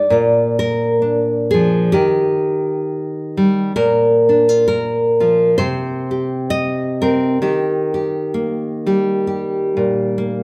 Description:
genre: folk, solo fingerstyle acoustic guitar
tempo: 66 BPM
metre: 4/4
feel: swing 57% on 8ths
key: unclear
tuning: A4 = 438 Hz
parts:
  - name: nylon-string guitar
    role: solo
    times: 0.0-10.4 s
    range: Bb2 to Eb5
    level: -17 LUFS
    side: equal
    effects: none
room: moderate large studio reverb, RT60 1.5 s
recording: none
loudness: -17 LUFS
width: mono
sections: 0.0-10.4 A section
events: none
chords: 0.1 Bb; 1.9 Eb; 3.8 Bb5; 5.6 Cm; 7.4 Eb

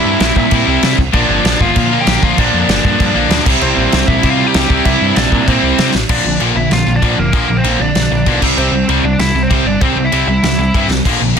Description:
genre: punk rock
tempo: 194 BPM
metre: 4/4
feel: straight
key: C mixolydian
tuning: A4 = 442 Hz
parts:
  - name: biting lead guitar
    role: melody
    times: 0.0-10.9 s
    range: Bb3 to G5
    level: -18 LUFS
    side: equal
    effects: overdrive
  - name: cranked stack guitar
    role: riff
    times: 0.0-11.4 s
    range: Bb2 to C4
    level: -16 LUFS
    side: left 17 dB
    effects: overdrive
  - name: cranked stack guitar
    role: riff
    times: 0.0-11.4 s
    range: Bb2 to F4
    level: -17 LUFS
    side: right 14 dB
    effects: overdrive
  - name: growling picked electric bass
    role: bass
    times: 0.0-11.4 s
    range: F1 to C3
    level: -18 LUFS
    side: equal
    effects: overdrive
  - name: loose indie drum kit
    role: drums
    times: 0.2-11.4 s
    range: crash cymbal, kick drum, snare drum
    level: -16 LUFS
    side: equal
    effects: none
room: little or no reverb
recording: dense, heavily limited modern master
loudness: -10 LUFS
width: side -7 dB against mid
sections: 0.0-6.1 A section; 6.1-11.4 B section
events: drum fill 5.9, 10.9; half time 6.1-11.4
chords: 0.0 C; 1.1 Bb; 3.5 C; 6.1 Bb; 8.4 C

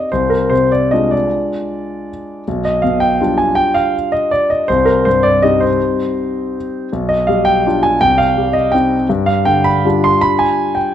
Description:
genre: classical, piano waltz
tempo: 148-176 BPM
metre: 3/4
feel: rubato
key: C minor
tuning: A4 = 437 Hz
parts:
  - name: clear concert grand piano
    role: solo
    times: 0.0-10.9 s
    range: B1 to C6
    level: -12 LUFS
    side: equal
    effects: none
room: moderate recital hall reverb, RT60 1.5 s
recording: close, detailed microphones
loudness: -12 LUFS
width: side -10 dB against mid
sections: 0.0-10.9 A section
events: none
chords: 0.1 Dm7b5/C; 2.5 G7/B; 4.7 Cm; 6.9 G7/B; 8.0 Cm; 9.1 G7

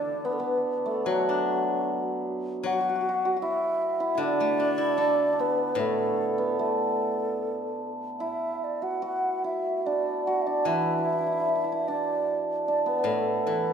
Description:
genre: chinese traditional, Chinese chamber ensemble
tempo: 75 BPM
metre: 4/4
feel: rubato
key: D gong mode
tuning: A4 = 440 Hz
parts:
  - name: mellow xiao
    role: melody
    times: 0.0-13.7 s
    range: F#4 to F#5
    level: -28 LUFS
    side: equal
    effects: none
  - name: hammered dulcimer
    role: second line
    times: 0.0-13.7 s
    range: F#3 to F#4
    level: -27 LUFS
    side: right 2 dB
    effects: none
  - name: steel-string zither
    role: accompaniment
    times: 0.0-13.7 s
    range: A2 to B4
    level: -33 LUFS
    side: left 7 dB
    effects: none
room: moderate scoring stage reverb, RT60 1.6 s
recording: minimal, uncompressed stereo recording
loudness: -24 LUFS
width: side -7 dB against mid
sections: 0.0-13.7 A section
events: none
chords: none

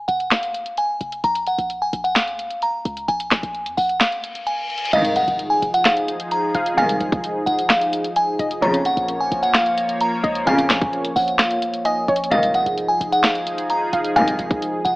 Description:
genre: hip hop, trap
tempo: 130 BPM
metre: 4/4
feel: half-time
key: F phrygian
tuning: A4 = 440 Hz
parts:
  - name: delicate synth tine bell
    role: melody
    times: 0.0-15.0 s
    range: F5 to Bb5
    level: -20 LUFS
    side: equal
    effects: chorus
  - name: short 808-style bass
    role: bass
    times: 0.0-15.0 s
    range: Eb1 to F2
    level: -31 LUFS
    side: equal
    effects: none
  - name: trap drum kit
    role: drums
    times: 0.1-15.0 s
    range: crash cymbal, handclaps, hi-hat, kick drum, snare drum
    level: -21 LUFS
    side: equal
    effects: none
  - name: reverse cymbal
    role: sound effects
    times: 4.2-4.9 s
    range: none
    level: -29 LUFS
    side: left 3 dB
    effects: none
  - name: warbly dusty pluck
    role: second line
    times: 4.9-15.0 s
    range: Db5 to F5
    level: -23 LUFS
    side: right 1 dB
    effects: chorus, tape echo
  - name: sweeping resonant pad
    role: sustained chords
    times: 4.9-15.0 s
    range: F3 to Db5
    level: -26 LUFS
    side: equal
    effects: chorus
  - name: muted chamber string section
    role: stabs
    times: 4.9-14.6 s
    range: Bb1 to Eb3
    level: -24 LUFS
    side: left 1 dB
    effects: none
room: light reverb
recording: AM radio sound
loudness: -17 LUFS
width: side -21 dB against mid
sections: 0.0-4.9 A section; 4.9-15.0 B section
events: kick muted 4.0-4.9; reverse cymbal 4.2-4.9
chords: 0.0 Fm; 1.2 Bbm; 4.9 Fm7; 8.6 Bbm; 12.3 Fm7

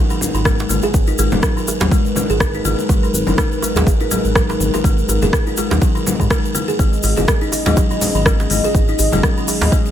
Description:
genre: afro house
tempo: 123 BPM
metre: 4/4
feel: swing 56% on 16ths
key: G# minor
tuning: A4 = 440 Hz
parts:
  - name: dark analog pad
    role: sustained chords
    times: 0.0-9.9 s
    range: G#3 to D#5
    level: -23 LUFS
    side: left 1 dB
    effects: chorus, sidechain pumping
  - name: buzzing kalimba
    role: arpeggios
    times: 0.0-9.8 s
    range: D#3 to G#4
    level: -21 LUFS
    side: equal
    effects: sidechain pumping, dub echo
  - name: congas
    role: percussion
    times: 0.1-9.9 s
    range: none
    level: -24 LUFS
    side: left 2 dB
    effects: none
  - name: egg shaker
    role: percussion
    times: 0.1-9.9 s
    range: none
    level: -26 LUFS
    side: left 3 dB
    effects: none
  - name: djembe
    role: percussion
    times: 0.2-9.7 s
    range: none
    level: -25 LUFS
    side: right 2 dB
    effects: none
  - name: round analog bass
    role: bass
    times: 0.3-9.7 s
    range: F#1 to G#2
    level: -20 LUFS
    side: equal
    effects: tube saturation, sidechain pumping
  - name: deep house drum kit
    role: drums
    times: 0.5-9.7 s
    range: hi-hat, rim click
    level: -23 LUFS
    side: equal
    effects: none
  - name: electronic kick drum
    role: drums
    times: 0.5-9.8 s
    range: none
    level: -16 LUFS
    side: equal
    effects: none
room: light reverb, studio ambience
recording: none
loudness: -14 LUFS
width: side -10 dB against mid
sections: 0.0-9.9 A section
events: none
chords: 0.0 G#m7; 6.8 C#5

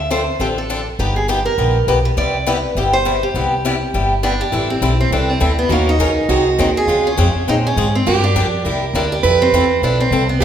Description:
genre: acoustic string swing (jazz manouche)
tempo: 204 BPM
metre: 4/4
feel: swing 57% on 8ths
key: unclear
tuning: A4 = 440 Hz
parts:
  - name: picked steel-string acoustic guitar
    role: melody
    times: 0.0-10.4 s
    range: Bb3 to D5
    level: -19 LUFS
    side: equal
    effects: none
  - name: upright bass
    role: bass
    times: 0.0-10.4 s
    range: G1 to Bb2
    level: -19 LUFS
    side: equal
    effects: none
  - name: picked swing-style acoustic guitar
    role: accompaniment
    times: 0.1-10.4 s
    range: C3 to Bb4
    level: -19 LUFS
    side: left 2 dB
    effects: none
  - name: picked plugged-in steel-string acoustic guitar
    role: second line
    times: 4.5-10.4 s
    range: E4 to B4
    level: -20 LUFS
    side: right 6 dB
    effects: none
room: wet recital hall reverb, RT60 1.3 s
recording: recorded in a church or concert hall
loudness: -14 LUFS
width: side -9 dB against mid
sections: 0.0-4.5 A section; 4.5-10.4 B section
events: none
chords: 0.0 Dm7; 1.0 G7alt; 2.2 Cmaj7; 4.5 Am7; 5.7 Ebm7; 6.3 Ab7; 6.9 Dbmaj7; 8.1 Gm7; 8.6 C9; 9.2 Fmaj7

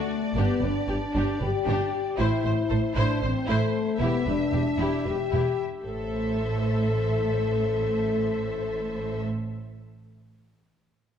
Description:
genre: cinematic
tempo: 230 BPM (eighths)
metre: 7/8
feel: straight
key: A minor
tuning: A4 = 440 Hz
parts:
  - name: rich symphonic violin section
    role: melody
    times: 0.0-9.2 s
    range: C5 to E5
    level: -38 LUFS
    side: left 3 dB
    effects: none
  - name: warm symphonic violin section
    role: second line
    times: 0.0-9.2 s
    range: D4 to C5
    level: -36 LUFS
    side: left 2 dB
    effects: none
  - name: rich symphonic viola section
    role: accompaniment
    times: 0.0-9.2 s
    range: G4 to C5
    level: -34 LUFS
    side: equal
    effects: none
  - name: dark French horn section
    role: sustained chords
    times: 0.0-9.2 s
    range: A3 to A4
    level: -28 LUFS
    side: left 5 dB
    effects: none
  - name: rich symphonic cello section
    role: bass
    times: 0.4-9.2 s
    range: E2 to A2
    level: -31 LUFS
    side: right 3 dB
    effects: none
  - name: rich symphonic double bass section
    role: bass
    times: 0.4-9.2 s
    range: E1 to A1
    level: -30 LUFS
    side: right 3 dB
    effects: none
room: moderate scoring stage reverb, RT60 1.8 s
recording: dark, warm production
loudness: -24 LUFS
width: side -8 dB against mid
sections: 0.0-5.8 A section; 5.8-9.5 B section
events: none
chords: 0.4 G; 2.2 Am; 4.0 Em7; 5.8 Am

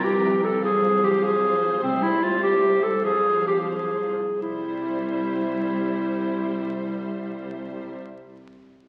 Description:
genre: classical, dramatic, fast romantic movement for symphony orchestra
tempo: 83-102 BPM (dotted quarters)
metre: 6/8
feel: straight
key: C major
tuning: A4 = 440 Hz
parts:
  - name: rich studio violin section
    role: melody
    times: 0.0-7.9 s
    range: E5 to G5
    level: -43 LUFS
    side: equal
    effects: none
  - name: clear clarinet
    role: second line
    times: 0.0-7.9 s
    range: C4 to A4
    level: -25 LUFS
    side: equal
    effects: none
  - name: rich symphonic violin section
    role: second line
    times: 0.0-7.9 s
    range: Bb4 to C5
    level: -38 LUFS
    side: equal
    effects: none
  - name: rich symphonic viola section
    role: accompaniment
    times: 0.0-7.9 s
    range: E3 to G3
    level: -36 LUFS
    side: equal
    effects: none
  - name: dark symphonic cello section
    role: bass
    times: 0.0-7.9 s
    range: C2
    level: -35 LUFS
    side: equal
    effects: none
  - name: clear symphonic double bass section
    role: bass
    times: 1.8-2.2, 4.4-7.9 s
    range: C2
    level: -46 LUFS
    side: equal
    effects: none
room: wet scoring stage reverb, RT60 1.8 s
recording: very old 78 rpm record, vinyl crackle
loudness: -23 LUFS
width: mono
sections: 0.0-4.4 A section; 4.4-7.2 B section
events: slowing down 1.2-4.4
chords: 0.0 C7; 0.6 Fm/C; 1.8 C; 3.0 Fm/C; 4.4 C

